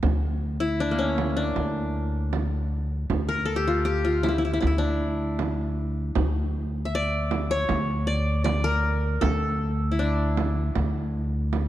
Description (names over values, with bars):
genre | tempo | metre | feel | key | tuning
Arabic maqam ensemble | 78 BPM | 4/4 | straight | unclear | A4 = 440 Hz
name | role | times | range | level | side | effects
upright bass | bass | 0.0-11.7 s | D2 | -26 LUFS | equal | none
frame drum | percussion | 0.0-11.7 s | none | -31 LUFS | right 6 dB | none
qanun | melody | 0.6-11.5 s | Bb3 to E5 | -27 LUFS | left 2 dB | none
room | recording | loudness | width
light reverb | dark, warm production | -23 LUFS | side -13 dB against mid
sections
0.0-11.7 A section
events
none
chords
none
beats
| 0.03 0.80 1.57 2.33 | 3.10 3.87 4.63 5.40 | 6.16 6.93 7.70 8.46 | 9.23 9.99 10.76 11.53